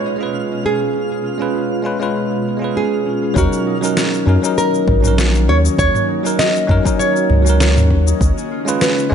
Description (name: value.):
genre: sunset chillout.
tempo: 99 BPM.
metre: 4/4.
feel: swing 53% on 16ths.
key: Eb minor.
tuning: A4 = 443 Hz.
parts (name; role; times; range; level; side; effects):
nylon-string guitar; melody; 0.0-9.1 s; Gb4 to Eb5; -20 LUFS; right 2 dB; ping-pong delay.
bell-like tine electric piano; accompaniment; 0.0-9.1 s; Gb3 to Cb5; -20 LUFS; moving between left 5 dB and right 6 dB; auto-pan, ping-pong delay.
shimmering ambient pad; sustained chords; 0.0-9.1 s; Cb3 to Gb4; -24 LUFS; equal; chorus, built-in reverb.
concert harp; arpeggios; 0.0-9.1 s; Db4 to Ab4; -26 LUFS; left 5 dB; ping-pong delay.
twinkling granular texture; texture; 0.0-3.4 s; F6; -35 LUFS; right 4 dB; built-in reverb.
round analog bass; bass; 3.4-9.1 s; Bb1 to Gb2; -14 LUFS; equal; tube saturation.
electronic kick drum; drums; 3.4-8.3 s; none; -18 LUFS; equal; overdrive.
smooth R&B drum kit; drums; 3.4-9.1 s; cabasa, snare drum, toms; -21 LUFS; equal; none.
room: light reverb, digital ambience.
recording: nothing above 10.5 kHz.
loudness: -14 LUFS.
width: side -8 dB against mid.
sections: 0.0-3.4 A section; 3.4-9.1 B section.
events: none.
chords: 0.0 Db7; 3.4 Ebm7; 8.2 Db7.